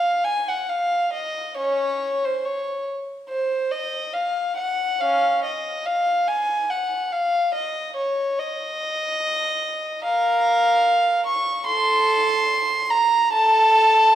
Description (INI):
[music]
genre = classical, baroque-style suite movement for unaccompanied violin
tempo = 71 BPM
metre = 4/4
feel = rubato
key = unclear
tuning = A4 = 440 Hz
[part]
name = rich violin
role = solo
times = 0.0-14.2 s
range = Db4 to Db6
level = -19 LUFS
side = equal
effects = none
[sound]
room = wet recital hall reverb, RT60 1.6 s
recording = heard from further back in the room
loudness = -19 LUFS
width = side -11 dB against mid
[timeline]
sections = 0.0-14.2 A section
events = none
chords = none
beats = 0.69 1.58 2.45 | 3.29 4.13 5.00 5.86 | 6.69 7.54 8.38 9.22 | 10.04 10.85 11.67 12.49 | 13.33